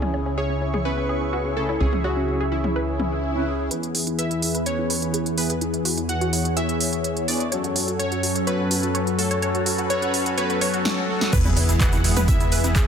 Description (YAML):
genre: progressive house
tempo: 126 BPM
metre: 4/4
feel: straight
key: unclear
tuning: A4 = 440 Hz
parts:
  - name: lush unison pad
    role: sustained chords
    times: 0.1-12.9 s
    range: E2 to C#6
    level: -28 LUFS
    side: equal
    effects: chorus, phaser, sidechain pumping
  - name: wide unison pluck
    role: arpeggios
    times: 0.0-12.8 s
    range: C#4 to C#5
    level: -30 LUFS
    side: right 1 dB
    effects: sidechain pumping, ping-pong delay
  - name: soft supersaw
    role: stabs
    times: 0.0-12.9 s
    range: C#3 to B4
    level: -26 LUFS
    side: left 2 dB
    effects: sidechain pumping, low-pass filter
  - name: plucky analog bass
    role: bass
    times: 0.0-3.7, 11.3-12.9 s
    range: E1 to C#2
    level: -25 LUFS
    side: right 1 dB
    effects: sidechain pumping
  - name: deep house drum kit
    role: drums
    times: 0.0-12.9 s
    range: crash cymbal, handclaps, hi-hat, ride cymbal, snare drum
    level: -25 LUFS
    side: right 2 dB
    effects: low-pass filter on hats, low-pass filter on snare, low-pass filter on cymbals, low-pass filter on room
  - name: electronic toms, bongos and congas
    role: percussion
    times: 0.0-3.4, 11.5-12.7 s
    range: none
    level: -30 LUFS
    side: left 2 dB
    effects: overdrive, sidechain pumping on perc, sidechain pumping on toms
  - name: plucky unison lead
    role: melody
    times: 0.4-12.9 s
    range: E4 to F#5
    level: -29 LUFS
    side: equal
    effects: sidechain pumping, tape echo
  - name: swell and impact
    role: sound effects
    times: 2.9-3.7, 11.5-12.9 s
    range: none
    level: -31 LUFS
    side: right 2 dB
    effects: none
  - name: breakbeat sampler-style drum kit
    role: drums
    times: 11.3-12.9 s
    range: hi-hat, shaker, snare drum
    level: -37 LUFS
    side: equal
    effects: none
  - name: electronic kick drum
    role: drums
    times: 11.3-12.9 s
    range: none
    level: -20 LUFS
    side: right 1 dB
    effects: none
  - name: tube shaker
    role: percussion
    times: 11.3-12.9 s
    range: none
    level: -35 LUFS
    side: left 2 dB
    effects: none
room: light reverb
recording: none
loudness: -20 LUFS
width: side -7 dB against mid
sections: 0.0-3.7 A section; 3.7-11.3 B section; 11.3-12.9 C section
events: filter sweep on analog synth pad 0.0-3.7, 3.7-11.3; swell 2.9-3.7; build-up 3.7-11.3; filter sweep on synth pluck 3.7-11.3; filter sweep on supersaw synth 3.7-11.3; drum fill 10.9-11.3; drop 11.3-12.9; impact 11.3-12.9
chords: 0.0 C#m; 3.7 E; 7.5 F#m; 11.3 E